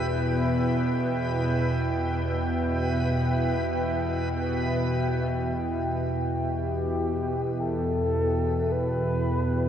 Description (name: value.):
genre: dark ambient drone.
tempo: free time.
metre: none.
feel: none.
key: unclear.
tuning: A4 = 444 Hz.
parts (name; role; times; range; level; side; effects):
deep dark ambient pad; sustained chords; 0.0-9.7 s; E4 to G5; -30 LUFS; equal; chorus, built-in reverb.
bowed-like drone; drone; 0.0-9.7 s; E2 to B2; -26 LUFS; equal; built-in reverb.
backwards swelling texture; texture; 0.0-9.7 s; B4; -37 LUFS; right 2 dB; built-in reverb.
mellow horn-like synth lead; melody; 6.5-9.7 s; G4 to B4; -29 LUFS; left 1 dB; chorus, diffuse ambient delay.
room: wet cathedral reverb, RT60 5.1 s.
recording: none.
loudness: -24 LUFS.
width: side -9 dB against mid.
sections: 0.0-5.3 A section; 5.3-9.7 B section.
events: none.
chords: 0.0 Em.